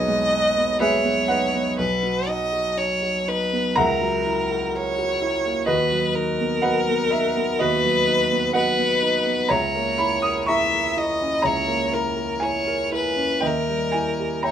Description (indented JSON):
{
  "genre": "classical, romantic duo for violin and grand piano",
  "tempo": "62 BPM",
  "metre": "4/4",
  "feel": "uneven beats, rubato",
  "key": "unclear",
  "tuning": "A4 = 441 Hz",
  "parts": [
    { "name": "rich violin", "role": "melody", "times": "0.0-14.5 s", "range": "A#4 to E5", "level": "-22 LUFS", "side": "left 2 dB", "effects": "none" },
    { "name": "warm grand piano", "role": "accompaniment", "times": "0.0-14.5 s", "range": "B1 to D#6", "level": "-23 LUFS", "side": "right 2 dB", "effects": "none" }
  ],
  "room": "light reverb",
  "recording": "none",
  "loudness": "-19 LUFS",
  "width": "side -9 dB against mid",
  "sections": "0.0-14.5 A section",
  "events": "none",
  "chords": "0.0 G#m/B; 1.8 B; 3.8 F#7/C#; 5.7 B/D#; 9.5 A#dim/C#; 13.4 D#(b9)"
}